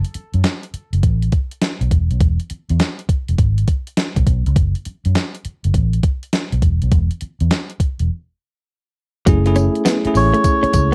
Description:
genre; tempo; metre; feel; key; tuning
R&B, new jack swing; 102 BPM; 4/4; swing 66% on 16ths; F# minor; A4 = 439 Hz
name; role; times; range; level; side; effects
gated 80s digital drum machine; drums; 0.0-10.9 s; hi-hat, kick drum, snare drum, tambourine; -20 LUFS; equal; gated reverb, gated reverb snare, overdrive
vintage muted fingered electric bass; bass; 0.2-10.9 s; E1 to F#2; -19 LUFS; equal; none
bell-like tine electric piano; accompaniment; 9.3-10.9 s; A3 to G#4; -20 LUFS; equal; none
direct-recorded clean electric guitar; riff; 9.3-10.9 s; F#3 to C#4; -24 LUFS; equal; subtle chorus
mellow cor anglais; melody; 10.2-10.9 s; C#5; -19 LUFS; equal; none
room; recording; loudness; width
little or no reverb; dry, close 1970s-style studio recording; -18 LUFS; mono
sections
0.0-9.3 A section; 9.3-10.9 B section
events
break 8.1-9.3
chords
0.0 F#m; 1.9 E; 4.6 F#m; 6.6 E5; 9.3 F#m7

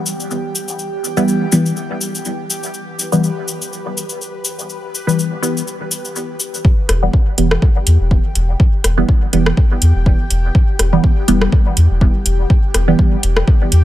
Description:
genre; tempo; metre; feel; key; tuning
dub techno; 123 BPM; 4/4; swing 55% on 16ths; E minor; A4 = 439 Hz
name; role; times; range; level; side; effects
filtered dub chord stab; stabs; 0.0-13.2 s; E3 to B3; -19 LUFS; right 1 dB; phaser, cassette tape, sidechain pumping, dub echo
bubbling stepped-filter texture; texture; 0.0-13.8 s; G4 to G5; -28 LUFS; left 1 dB; chorus, built-in reverb, sidechain pumping
cabasa; percussion; 0.1-6.6 s; none; -22 LUFS; left 3 dB; none
electronic kick drum; drums; 6.6-13.6 s; none; -12 LUFS; equal; overdrive
soft dub sub bass; bass; 6.9-13.8 s; E1 to E2; -14 LUFS; equal; sidechain pumping
deep house drum kit; drums; 6.9-13.8 s; hi-hat, rim click; -17 LUFS; equal; overdrive
room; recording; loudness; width
little or no reverb; none; -13 LUFS; side -14 dB against mid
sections
0.0-6.6 A section; 6.6-13.8 B section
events
filter sweep on synth stab 6.6-13.8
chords
0.0 Em

